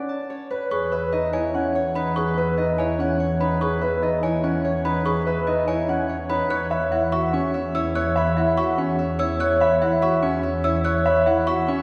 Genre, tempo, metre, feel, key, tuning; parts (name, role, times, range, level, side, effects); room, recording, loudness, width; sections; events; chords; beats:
classical, minimalist pattern music; 290 BPM (eighths); 7/8; straight; E major; A4 = 441 Hz
Celtic harp; melody; 0.0-11.8 s; B4 to C#6; -27 LUFS; equal
warm baby grand piano; arpeggios; 0.0-11.8 s; C#4 to E5; -27 LUFS; equal
worn celesta; arpeggios; 0.7-11.7 s; D#5 to F#6; -30 LUFS; equal
rich symphonic double bass section; bass; 0.7-11.8 s; E2; -29 LUFS; equal
wet concert hall reverb, RT60 1.8 s; recorded in a church or concert hall; -22 LUFS; mono
0.7-11.8 A section
0.0 Bm7; 0.7 Emaj9; 6.5 Bsus4/E
0.09 0.30 0.51 | 0.71 0.92 1.13 1.33 1.54 1.75 1.95 | 2.16 2.37 2.58 2.78 2.99 3.20 3.40 | 3.61 3.82 4.02 4.23 4.44 4.64 4.85 | 5.06 5.26 5.47 5.68 5.88 6.09 6.30 | 6.51 6.71 6.92 7.13 7.33 7.54 7.75 | 7.95 8.16 8.37 8.57 8.78 8.99 9.20 | 9.40 9.61 9.82 10.02 10.23 10.44 10.64 | 10.85 11.06 11.27 11.47 11.68